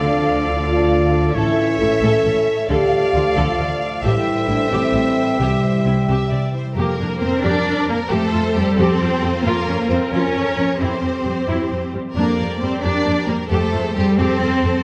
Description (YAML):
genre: cinematic, heroic adventure film score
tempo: 89 BPM (dotted quarters)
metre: 6/8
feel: straight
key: D minor, F major from 6.8 s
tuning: A4 = 440 Hz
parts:
  - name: warm symphonic violin section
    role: melody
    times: 0.0-14.8 s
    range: G4 to F5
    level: -29 LUFS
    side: equal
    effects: none
  - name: bright oboe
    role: second line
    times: 0.0-6.5 s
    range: C#5 to E5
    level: -29 LUFS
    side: equal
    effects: none
  - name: dark clarinet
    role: second line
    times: 0.0-6.5 s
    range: G4 to A4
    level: -30 LUFS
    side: equal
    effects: none
  - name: mellow hollow flute section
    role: second line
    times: 0.0-6.5 s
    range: E5 to G5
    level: -31 LUFS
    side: equal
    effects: none
  - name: rich symphonic violin section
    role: second line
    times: 0.0-14.8 s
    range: F4 to E5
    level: -33 LUFS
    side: equal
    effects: none
  - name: warm symphonic viola section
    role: accompaniment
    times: 0.0-14.8 s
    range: G3 to Bb4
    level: -28 LUFS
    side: equal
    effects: none
  - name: dark French horn section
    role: sustained chords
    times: 0.0-6.5 s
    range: G3 to A4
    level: -22 LUFS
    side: equal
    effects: none
  - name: warm trombone section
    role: sustained chords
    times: 0.0-6.5 s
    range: E3 to D4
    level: -31 LUFS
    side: equal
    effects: none
  - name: concert harp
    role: arpeggios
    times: 0.0-14.8 s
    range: F2 to A5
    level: -30 LUFS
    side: equal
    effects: none
  - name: warm symphonic cello section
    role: bass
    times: 0.0-14.8 s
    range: A2 to D4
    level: -24 LUFS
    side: equal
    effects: none
  - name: warm symphonic double bass section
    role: bass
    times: 0.0-14.7 s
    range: A1 to F2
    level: -26 LUFS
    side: equal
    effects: none
room: wet concert hall reverb, RT60 1.9 s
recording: none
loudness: -18 LUFS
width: mono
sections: 0.0-6.8 A section; 6.8-14.8 B section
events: none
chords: 0.0 Dm; 1.4 A; 2.7 Dm; 4.0 Am7; 5.4 C; 6.8 Gm/F; 8.1 Fadd9; 9.5 Bbm/F; 10.8 C/F; 12.2 Gm/F; 13.5 Fadd9